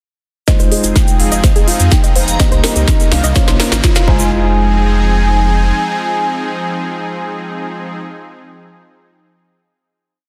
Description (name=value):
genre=progressive house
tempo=125 BPM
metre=4/4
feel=straight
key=F minor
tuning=A4 = 440 Hz
part: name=supersaw pad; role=sustained chords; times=0.5-7.9 s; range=C3 to C5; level=-24 LUFS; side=equal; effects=sidechain pumping
part: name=soft round pluck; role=arpeggios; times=0.5-4.5 s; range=Eb4 to F5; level=-25 LUFS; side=equal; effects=chorus, sidechain pumping, digital delay
part: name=dark grand piano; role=stabs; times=0.5-7.9 s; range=Ab3 to C5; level=-24 LUFS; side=equal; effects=sidechain pumping, low-pass filter, digital delay
part: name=big-room dance drum kit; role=drums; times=0.5-4.1 s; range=hi-hat, snare drum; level=-21 LUFS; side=equal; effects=sidechain pumping on hats
part: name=electronic kick drum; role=drums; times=0.5-4.2 s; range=none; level=-14 LUFS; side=equal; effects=none
part: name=egg shaker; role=percussion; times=0.5-4.3 s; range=none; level=-26 LUFS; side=equal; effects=none
part: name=riser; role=sound effects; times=2.1-4.3 s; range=none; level=-32 LUFS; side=equal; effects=none
part: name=backwards swelling texture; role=texture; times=1.3-4.3 s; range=Bb5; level=-33 LUFS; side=equal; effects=none
part: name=saturated sub bass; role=bass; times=0.6-5.7 s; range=F1 to F2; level=-17 LUFS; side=equal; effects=sidechain pumping
part: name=warm velvety synth lead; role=melody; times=0.7-7.9 s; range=Eb5 to Ab5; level=-23 LUFS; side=equal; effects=chorus, cassette tape, digital delay
room=light reverb, digital ambience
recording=dense, heavily limited modern master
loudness=-13 LUFS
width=mono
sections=0.5-4.3 build; 4.3-8.2 final hit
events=build-up 0.5-4.3; drum fill 0.5-4.3; filter sweep on synth pluck 0.5-4.3; filter sweep on soft synth lead 0.5-4.3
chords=0.5 Fm7; 2.4 Cm7; 3.4 Bbmadd9; 4.1 Fm7